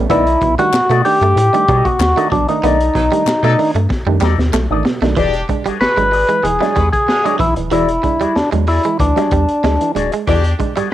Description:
funk; 94 BPM; 4/4; straight; E mixolydian; A4 = 440 Hz
direct-recorded clean electric guitar; riff; 0.0-10.9 s; E3 to B3; -22 LUFS; right 7 dB; cassette tape
muted clav; stabs; 0.0-10.7 s; B2 to D4; -22 LUFS; right 9 dB; auto-wah, cassette tape
rubbery square bass; bass; 0.0-10.8 s; D#1 to B2; -17 LUFS; left 1 dB
percussive tonewheel organ; melody; 0.1-9.9 s; D4 to B4; -14 LUFS; left 1 dB; overdrive, cassette tape
electric guitar with an envelope filter; accompaniment; 0.1-10.9 s; D#4 to D5; -22 LUFS; left 10 dB; wah, cassette tape
crunchy breakbeat drum kit; drums; 0.1-10.9 s; hi-hat, kick drum, snare drum; -21 LUFS; left 1 dB; cassette tape
group handclap; percussion; 0.7-4.7 s; -27 LUFS; left 11 dB
warm horn section; second line; 3.0-10.9 s; D3 to B4; -26 LUFS; left 1 dB; cassette tape, analog delay
light reverb, studio ambience; home recording on cassette; -12 LUFS; side -13 dB against mid
0.0-5.2 A section; 5.2-10.9 B section
band accent 2.6-5.2; drum fill 3.9-5.2
0.1 B7#9; 5.2 E9
| 0.09 0.73 1.36 2.00 | 2.63 3.27 3.90 4.54 | 5.17 5.81 6.44 7.08 | 7.72 8.36 8.99 9.63 | 10.27 10.91

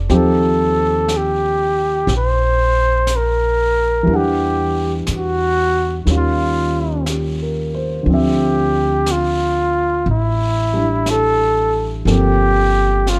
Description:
jazz ballad; 60 BPM; 4/4; swing 69% on 8ths; A4 = 440 Hz
dark grand piano; accompaniment; 0.0-13.2 s; D3 to F#5; -22 LUFS; equal
upright bass; bass; 0.0-13.2 s; G1 to E2; -22 LUFS; equal
warm flugelhorn; melody; 0.1-13.2 s; E4 to C5; -20 LUFS; equal; plate reverb
jazz brush drum kit; drums; 0.1-13.2 s; brushed snare drum, hi-hat, snare drum; -33 LUFS; equal
light reverb; dark, warm production; -17 LUFS; mono
0.0-13.2 A section
0.1 Eb69; 4.1 Em9; 6.1 Eb9; 8.1 Dm9; 12.1 Gm11
| 0.10 1.10 2.09 3.09 | 4.09 5.08 6.08 7.08 | 8.08 9.07 10.07 11.07 | 12.07 13.07

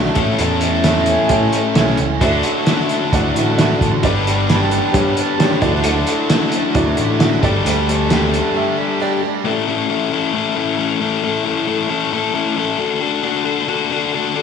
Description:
classic rock; 133 BPM; 4/4; straight; A mixolydian; A4 = 439 Hz
clear grand piano; accompaniment; 0.0-9.4 s; E4 to G5; -24 LUFS; right 3 dB
picked plugged-in twelve-string acoustic guitar; accompaniment; 0.0-9.5 s; G2 to G4; -24 LUFS; right 4 dB
overdriven electric guitar; riff; 0.0-14.4 s; A2 to B4; -18 LUFS; left 7 dB
tight distorted guitar; riff; 0.0-9.5 s; G2 to G4; -24 LUFS; right 10 dB; distortion, slapback echo
picked electric bass; bass; 0.0-8.4 s; G1 to A2; -20 LUFS; right 1 dB
cloth-damped thuddy drum kit; drums; 0.1-8.4 s; hi-hat, kick drum, snare drum; -19 LUFS; right 1 dB
wet lush hall reverb, RT60 1.7 s, small room ambience; big arena sound; -14 LUFS; side -7 dB against mid
0.0-9.5 A section; 9.5-14.4 B section
break 8.6-9.5
0.2 A; 2.2 Dadd9; 4.0 G; 5.6 Dadd9; 7.4 Gsus2; 9.5 A; 12.8 D
| 0.41 0.86 1.31 1.77 | 2.22 2.68 3.13 3.58 | 4.04 4.49 4.95 5.40 | 5.85 6.30 6.75 7.20 | 7.65 8.10 8.55 9.00 | 9.45 9.90 10.35 10.79 | 11.24 11.69 12.13 12.58 | 13.03 13.47 13.92 14.36

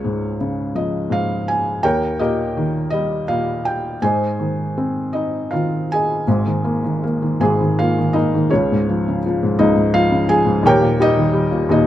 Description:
classical, lyrical solo piano; 82 BPM; 3/4; uneven beats, rubato; Ab major; A4 = 441 Hz
felt-muted upright piano; solo; 0.0-11.9 s; Eb1 to Ab5; -16 LUFS; equal
light reverb; close, detailed microphones; -16 LUFS; side -12 dB against mid
0.0-6.3 A section; 6.3-11.9 A section
0.0 Db; 1.8 Eb7; 4.0 Ab; 6.3 Absus2; 8.5 Db; 10.6 Eb7
0.40 1.10 | 1.83 2.55 3.27 | 4.01 4.75 5.51 | 6.27 7.02 7.77 | 8.50 9.22 9.93 | 10.64 11.35

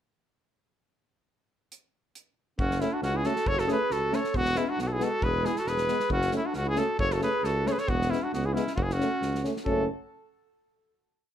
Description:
balkan folk, Balkan brass band; 135 BPM; 2/4; swing 53% on 16ths; F# minor; A4 = 440 Hz
natural country drum kit; percussion; 1.7-9.9 s; hi-hat, kick drum, snare drum; -35 LUFS; equal
clear trumpet; melody; 2.6-9.9 s; E4 to C#5; -29 LUFS; left 1 dB; plate reverb
warm clarinet; second line; 2.6-9.9 s; B3 to A4; -33 LUFS; right 2 dB
warm tuba; bass; 2.6-9.9 s; E1 to C#2; -32 LUFS; equal
mellow trombone; accompaniment; 2.8-9.9 s; G#3 to A3; -34 LUFS; right 4 dB
warm euphonium; accompaniment; 2.8-9.9 s; B3 to C#4; -34 LUFS; left 4 dB
moderate small room reverb, RT60 0.6 s; dark, warm production; -25 LUFS; side -10 dB against mid
1.7-2.6 pickup bar; 2.6-9.7 A section; 9.7-10.6 final chord
1.7 N.C.; 2.6 F#m; 4.3 E; 6.1 F#m; 7.9 E; 8.8 F#m
| 1.71 2.15 | 2.58 3.02 | 3.46 3.90 | 4.34 4.78 | 5.22 5.66 | 6.11 6.55 | 6.99 7.44 | 7.88 8.33 | 8.78 9.22 | 9.67

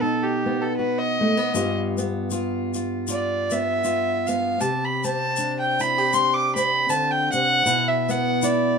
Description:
acoustic folk duo or small band; 78 BPM; 4/4; swing 57% on 8ths; A4 = 440 Hz
warm fiddle; second line; 0.0-8.8 s; G4 to D6; -22 LUFS; right 1 dB
fingerpicked steel-string acoustic guitar; accompaniment; 0.0-8.8 s; G2 to G4; -24 LUFS; left 1 dB
tube shaker; percussion; 1.5-8.6 s; -31 LUFS; left 6 dB
moderate studio ambience, RT60 0.5 s; minimal, uncompressed stereo recording; -20 LUFS; side -5 dB against mid
0.0-8.8 A section
fiddle solo 0.0-8.8
0.0 B; 1.6 G7; 4.6 Csus2; 7.7 Bsus4
0.02 0.78 | 1.55 2.32 3.08 3.85 | 4.61 5.38 6.14 6.90 | 7.67 8.43

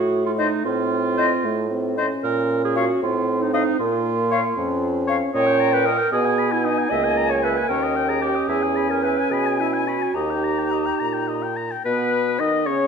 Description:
quick classical-period movement for wind quintet; 76 BPM (dotted quarters); 6/8; rubato; Bb minor; A4 = 436 Hz
mellow French horn; accompaniment; 0.0-12.9 s; A3 to D#4; -26 LUFS; left 1 dB
warm clarinet; accompaniment; 0.0-12.9 s; B3 to D#5; -23 LUFS; right 6 dB
mellow bassoon; bass; 0.0-12.9 s; C#2 to D#3; -26 LUFS; right 1 dB
bright concert flute; melody; 0.4-12.9 s; B4 to A#5; -26 LUFS; left 9 dB
warm oboe; second line; 0.4-12.9 s; B4 to B5; -27 LUFS; left 5 dB
wet recital hall reverb, RT60 1.5 s; -19 LUFS; side -6 dB against mid
0.0-11.9 A section; 11.9-12.9 B section
0.0 Am; 2.2 Bbm; 3.0 F7/A; 3.8 Bbm; 5.3 D#7/A#; 6.1 G#m/B; 6.9 A#m7b5/C#; 7.7 D#7; 8.5 E; 10.2 D#; 11.9 Badd9
| 0.64 1.43 | 2.23 3.02 | 3.79 4.57 | 5.35 6.12 | 6.91 7.69 | 8.48 9.31 | 10.15 11.01 | 11.86 12.66

